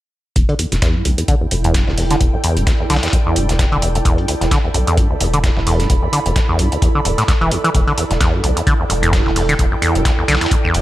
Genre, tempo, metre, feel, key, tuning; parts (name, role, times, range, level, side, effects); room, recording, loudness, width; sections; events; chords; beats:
acid house; 130 BPM; 4/4; swing 56% on 16ths; E minor; A4 = 440 Hz
deep acid bass; riff; 0.4-10.8 s; D2 to E3; -18 LUFS; equal; tube saturation, digital delay
saturated sub bass; bass; 0.4-10.8 s; D1 to B1; -20 LUFS; equal; sidechain pumping
dusty soul sampler-style drum kit; drums; 0.4-10.8 s; hi-hat, snare drum; -26 LUFS; left 1 dB; sidechain pumping on hats, high-pass filter on hats, high-pass filter on snare, gated reverb
electronic hi-hat; drums; 0.4-10.8 s; -25 LUFS; right 2 dB
electronic kick drum; drums; 0.4-10.6 s; -17 LUFS; equal
ethereal airy pad; texture; 0.8-10.8 s; E4 to B5; -23 LUFS; right 3 dB; ensemble chorus, built-in reverb, sidechain pumping
light reverb, digital ambience; bright 1980s-style digital production; -13 LUFS; side -15 dB against mid
0.4-10.8 A section
0.4 Em
| 0.36 0.82 1.28 1.75 | 2.21 2.67 3.13 3.59 | 4.05 4.51 4.98 5.44 | 5.90 6.36 6.82 7.28 | 7.75 8.21 8.67 9.13 | 9.59 10.05 10.51